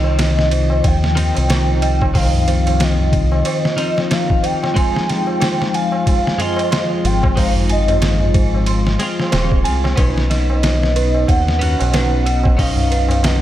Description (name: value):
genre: trip hop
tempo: 92 BPM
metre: 4/4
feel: swing 59% on 16ths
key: C minor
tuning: A4 = 440 Hz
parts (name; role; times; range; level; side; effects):
- pure breathy sine lead; melody; 0.0-13.4 s; Eb5 to Ab5; -22 LUFS; left 1 dB; analog chorus, tape echo
- twelve-string electric guitar; accompaniment; 0.0-13.4 s; Eb3 to F#4; -23 LUFS; left 2 dB; tremolo, vintage 12-bit sampler grit, tape echo
- dark analog pad; sustained chords; 0.0-13.4 s; F3 to F4; -25 LUFS; equal; chorus
- dark detuned synth bell; arpeggios; 0.0-13.4 s; B4 to C6; -26 LUFS; right 3 dB; chorus, phaser, ping-pong delay
- round analog bass; bass; 0.0-13.4 s; Eb1 to Eb2; -17 LUFS; equal; none
- tabla; percussion; 0.0-13.4 s; none; -27 LUFS; equal; none
- trip hop sampler-style drum kit; drums; 0.2-13.4 s; hi-hat, kick drum, ride cymbal, snare drum; -19 LUFS; equal; none
room: little or no reverb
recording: none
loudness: -14 LUFS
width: side -13 dB against mid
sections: 0.0-13.4 A section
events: none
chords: 0.0 Cm; 4.8 Ab; 10.0 Badd9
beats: 0.20 0.85 1.50 | 2.15 2.81 3.46 4.11 | 4.76 5.42 6.07 6.72 | 7.37 8.02 8.68 9.33 | 9.98 10.63 11.29 11.94 | 12.59 13.24